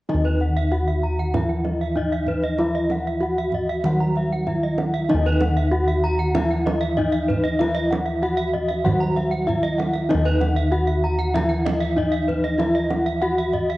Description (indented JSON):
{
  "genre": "Balinese gamelan",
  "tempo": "96 BPM",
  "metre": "4/4",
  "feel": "straight",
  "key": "Eb pelog",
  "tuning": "A4 = 440 Hz",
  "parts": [
    { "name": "gamelan-type bronze metallophone", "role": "melody", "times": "0.1-13.8 s", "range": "Eb4 to Gb4", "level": "-24 LUFS", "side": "left 1 dB", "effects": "none" },
    { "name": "gamelan-type bronze metallophone", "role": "accompaniment", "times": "0.1-13.8 s", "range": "Eb3 to Gb3", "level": "-29 LUFS", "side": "equal", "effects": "none" },
    { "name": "gamelan-type bronze metallophone", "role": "arpeggios", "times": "0.1-13.7 s", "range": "Cb5 to Bb5", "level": "-28 LUFS", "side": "left 2 dB", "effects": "tape echo" },
    { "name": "gamelan-type bossed gongs", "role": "bass", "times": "0.1-13.8 s", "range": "Eb2 to Fb4+35c", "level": "-24 LUFS", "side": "equal", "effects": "none" },
    { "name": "kendang", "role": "percussion", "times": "0.1-13.7 s", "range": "none", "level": "-29 LUFS", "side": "right 3 dB", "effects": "none" },
    { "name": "gamelan-type bronze metallophone", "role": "arpeggios", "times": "0.2-13.8 s", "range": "Cb5 to Bb5", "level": "-29 LUFS", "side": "right 4 dB", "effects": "none" }
  ],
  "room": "light reverb",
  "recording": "worn, warbling old tape, cassette tape, warbly pitch drift",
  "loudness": "-19 LUFS",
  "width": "side -17 dB against mid",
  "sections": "0.1-13.8 A section",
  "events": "none",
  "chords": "none"
}